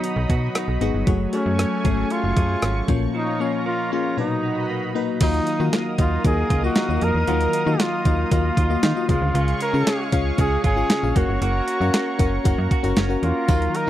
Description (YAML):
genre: 1980s-style pop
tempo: 116 BPM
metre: 4/4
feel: straight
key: unclear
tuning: A4 = 440 Hz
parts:
  - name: clear flugelhorn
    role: melody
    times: 0.0-13.9 s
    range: Db4 to Bb4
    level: -25 LUFS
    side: right 1 dB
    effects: slapback echo
  - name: FM electric piano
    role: accompaniment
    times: 0.0-13.9 s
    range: Bb2 to Ab5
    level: -26 LUFS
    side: left 8 dB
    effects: chorus
  - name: lush unison pad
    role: sustained chords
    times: 0.0-13.9 s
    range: Gb3 to Eb6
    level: -30 LUFS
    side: right 1 dB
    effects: chorus
  - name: direct-recorded clean electric guitar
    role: riff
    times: 0.0-13.9 s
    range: Eb3 to Ab4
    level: -29 LUFS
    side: right 7 dB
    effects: wide subtle chorus, slapback echo
  - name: clean 12-bit digital drum machine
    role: drums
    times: 0.0-13.9 s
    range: crash cymbal, hi-hat, kick drum, rim click, snare drum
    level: -21 LUFS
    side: right 1 dB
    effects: overdrive
  - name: slap-like FM bass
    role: bass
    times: 0.2-13.9 s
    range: Gb1 to Eb3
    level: -23 LUFS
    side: right 1 dB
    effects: none
  - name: tambourine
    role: percussion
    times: 13.5-13.6 s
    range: none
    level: -41 LUFS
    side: right 6 dB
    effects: none
room: little or no reverb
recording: dry, close 1970s-style studio recording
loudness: -18 LUFS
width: side -12 dB against mid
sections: 0.0-5.2 A section; 5.2-13.9 B section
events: break 3.1-5.2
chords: 0.0 Cb; 1.1 Gbmadd9; 2.9 Bbm; 4.2 Cbmaj7; 5.2 Ebmadd9; 9.1 Db; 11.2 Gb